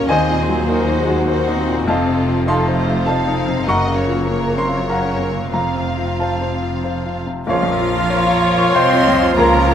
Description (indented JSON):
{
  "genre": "classical",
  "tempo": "90-103 BPM",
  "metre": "3/4",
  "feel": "rubato",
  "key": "Bb minor",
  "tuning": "A4 = 441 Hz",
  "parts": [
    { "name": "bright grand piano", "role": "melody", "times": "0.0-9.7 s", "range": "Bb1 to Db6", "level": "-19 LUFS", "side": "left 2 dB", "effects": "none" },
    { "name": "rich studio violin section", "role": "melody", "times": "0.0-9.7 s", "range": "F4 to F5", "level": "-26 LUFS", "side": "left 2 dB", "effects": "none" },
    { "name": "rich chamber violin section", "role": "second line", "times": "0.0-9.7 s", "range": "F4 to C6", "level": "-27 LUFS", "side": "equal", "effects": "none" },
    { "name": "rich studio viola section", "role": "accompaniment", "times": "0.0-9.7 s", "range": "Ab3 to Db5", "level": "-24 LUFS", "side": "left 1 dB", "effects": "none" },
    { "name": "rich chamber double bass section", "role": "bass", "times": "0.0-9.7 s", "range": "F1 to Eb2", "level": "-23 LUFS", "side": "right 2 dB", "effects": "none" },
    { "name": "warm chamber cello section", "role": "bass", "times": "0.0-9.7 s", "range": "Eb2 to C4", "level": "-24 LUFS", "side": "right 2 dB", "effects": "none" },
    { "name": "clear oboe", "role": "second line", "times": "7.5-9.7 s", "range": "F4", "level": "-25 LUFS", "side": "right 2 dB", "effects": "none" },
    { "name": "mellow flute section", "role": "second line", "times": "7.5-9.7 s", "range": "Bb4 to Eb5", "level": "-24 LUFS", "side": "right 1 dB", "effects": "none" },
    { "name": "warm clarinet", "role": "second line", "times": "7.5-9.7 s", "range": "F4 to C5", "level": "-24 LUFS", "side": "equal", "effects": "none" },
    { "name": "warm bassoon", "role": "accompaniment", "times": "7.5-9.7 s", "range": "F3", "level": "-24 LUFS", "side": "right 1 dB", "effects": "none" },
    { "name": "bright trombone section", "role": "sustained chords", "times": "7.5-9.6 s", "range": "Db3 to F3", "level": "-27 LUFS", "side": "right 5 dB", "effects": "none" },
    { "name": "mellow French horn section", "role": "sustained chords", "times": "7.5-9.6 s", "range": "Bb3 to F4", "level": "-25 LUFS", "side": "left 3 dB", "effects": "none" },
    { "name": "mellow trumpet", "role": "stabs", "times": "7.5-9.7 s", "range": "F4 to C5", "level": "-22 LUFS", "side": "right 2 dB", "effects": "none" }
  ],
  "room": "moderate scoring stage reverb, RT60 1.8 s",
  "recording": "close, detailed microphones",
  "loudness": "-15 LUFS",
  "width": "side -9 dB against mid",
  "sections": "0.0-7.5 A section; 7.5-9.7 B section",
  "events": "none",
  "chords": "0.1 Cm7b5/Eb; 1.9 F7; 3.7 Gbmaj7; 5.5 F; 7.5 Bbm"
}